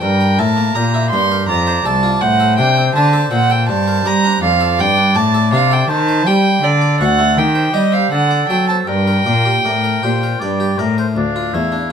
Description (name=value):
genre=classical, baroque-style sonata movement with continuo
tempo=81 BPM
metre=3/4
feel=straight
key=G minor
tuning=A4 = 439 Hz
part: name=warm oboe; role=melody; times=0.0-11.9 s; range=D4 to D5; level=-22 LUFS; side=left 3 dB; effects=none
part: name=warm violin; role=second line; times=0.0-11.9 s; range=D5 to C6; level=-16 LUFS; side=right 4 dB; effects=none
part: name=harpsichord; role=accompaniment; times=0.0-11.9 s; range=C2 to D5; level=-20 LUFS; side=left 2 dB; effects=none
part: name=rich cello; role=bass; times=0.0-11.9 s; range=C2 to G3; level=-16 LUFS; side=equal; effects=none
room=moderate studio reverb, RT60 0.6 s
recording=minimal, uncompressed stereo recording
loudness=-12 LUFS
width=side -7 dB against mid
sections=0.0-11.2 A section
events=none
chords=0.0 Edim/G; 1.5 F; 2.2 D5/A; 3.7 Gm; 4.4 Dm/F; 5.9 Cm/Eb; 6.6 D; 7.4 Cm/Eb; 8.1 D7; 8.9 Gm; 11.2 Dm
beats=| 0.02 0.75 1.48 | 2.21 2.95 3.69 | 4.42 5.15 5.89 | 6.63 7.37 8.12 | 8.88 9.64 10.40 | 11.16 11.90